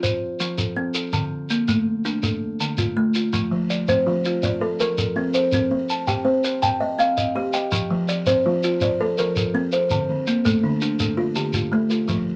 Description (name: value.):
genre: southern african traditional, mbira-style interlocking cycle.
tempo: 109 BPM (dotted quarters).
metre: 12/8.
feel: straight.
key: F mixolydian.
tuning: A4 = 441 Hz.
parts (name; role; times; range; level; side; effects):
kalimba; arpeggios; 0.0-12.4 s; D3 to A5; -26 LUFS; equal; none.
shekere; percussion; 0.0-12.3 s; none; -29 LUFS; equal; none.
buzzing kalimba; arpeggios; 3.5-12.4 s; D3 to A5; -24 LUFS; equal; none.
room: wet club ambience, RT60 0.5 s.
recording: none.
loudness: -22 LUFS.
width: mono.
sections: 0.0-12.1 A section.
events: none.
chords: 0.0 F; 1.1 Dm; 3.3 F; 5.5 Cm; 7.7 F; 9.9 Dm.